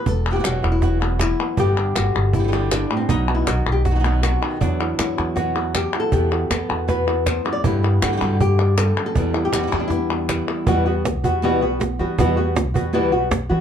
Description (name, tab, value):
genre	flamenco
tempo	158 BPM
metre	4/4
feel	straight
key	E minor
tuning	A4 = 440 Hz
part	flamenco guitar	melody	0.0-13.6 s	E2 to D5	-22 LUFS	left 2 dB	none
part	flamenco guitar	stabs	0.1-13.6 s	B2 to G4	-28 LUFS	right 7 dB	none
part	upright bass	bass	0.1-13.6 s	E1 to E3	-22 LUFS	equal	none
part	cajon	percussion	0.1-13.5 s	none	-24 LUFS	right 3 dB	none
part	palmas hand claps	percussion	0.3-10.7 s	none	-26 LUFS	left 5 dB	none
room	moderate small room reverb, RT60 0.5 s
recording	dark, warm production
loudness	-17 LUFS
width	side -8 dB against mid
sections	0.0-10.7 A section; 10.7-13.6 B section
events	none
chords	0.0 Esus2; 1.6 G; 3.1 B; 4.6 Esus2; 7.6 G; 9.2 Em; 10.7 Emadd9